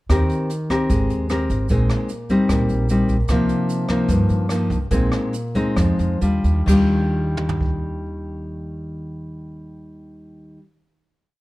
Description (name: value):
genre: bossa nova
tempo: 128-151 BPM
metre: 4/4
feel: straight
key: Eb major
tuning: A4 = 444 Hz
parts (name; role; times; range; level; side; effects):
- nylon-string guitar; accompaniment; 0.1-10.6 s; G2 to Bb4; -20 LUFS; left 1 dB; none
- upright bass; bass; 0.1-10.6 s; Ab1 to G2; -22 LUFS; equal; none
- jazz brush drum kit; drums; 0.1-7.7 s; crash cymbal, hi-hat, kick drum, rim click, toms; -26 LUFS; right 1 dB; none
- tube shaker; percussion; 0.1-6.8 s; none; -42 LUFS; right 8 dB; none
room: little or no reverb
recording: dark, warm production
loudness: -17 LUFS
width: side -18 dB against mid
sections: 0.1-6.7 A section; 6.7-10.4 final chord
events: slowing down 3.3-6.7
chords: 0.1 Eb6; 0.9 Abmaj9; 1.7 Bb9sus4; 2.5 Eb6/Bb; 3.3 Cm7; 4.9 Bb9sus4; 6.2 Ebmaj9